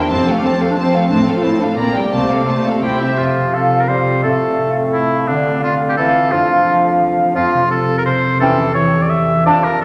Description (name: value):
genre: classical, dramatic, fast romantic movement for symphony orchestra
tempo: 172 BPM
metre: 3/4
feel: rubato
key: F major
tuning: A4 = 440 Hz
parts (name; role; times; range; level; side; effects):
- warm symphonic violin section; melody; 0.0-3.2 s; E5 to Bb5; -25 LUFS; equal; none
- dark clarinet; second line; 0.0-9.6 s; A3 to F4; -24 LUFS; equal; none
- warm symphonic violin section; second line; 0.0-3.2 s; G4 to D5; -26 LUFS; equal; none
- rich symphonic viola section; accompaniment; 0.0-3.2 s; G3 to E4; -24 LUFS; equal; none
- concert harp; arpeggios; 0.0-9.8 s; E2 to D5; -22 LUFS; equal; none
- warm symphonic cello section; bass; 0.0-3.1 s; F2 to C3; -23 LUFS; equal; none
- rich symphonic double bass section; bass; 0.1-3.1 s; F1 to C2; -33 LUFS; equal; none
- warm oboe; second line; 2.8-9.8 s; D4 to E5; -20 LUFS; equal; none
- mellow concert flute; second line; 3.2-9.6 s; F5 to A5; -21 LUFS; equal; none
- mellow bassoon; accompaniment; 3.2-9.8 s; D3 to A3; -22 LUFS; equal; none
room: wet scoring stage reverb, RT60 2.1 s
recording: none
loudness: -15 LUFS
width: mono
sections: 0.0-3.2 A section; 3.2-9.8 B section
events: none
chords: 0.1 F; 1.1 F/A; 1.8 Gm/Bb; 2.1 F/C; 2.8 C; 3.2 F; 4.2 F/A; 5.3 Dm7; 6.3 Dm/F; 7.4 F; 8.4 A7/E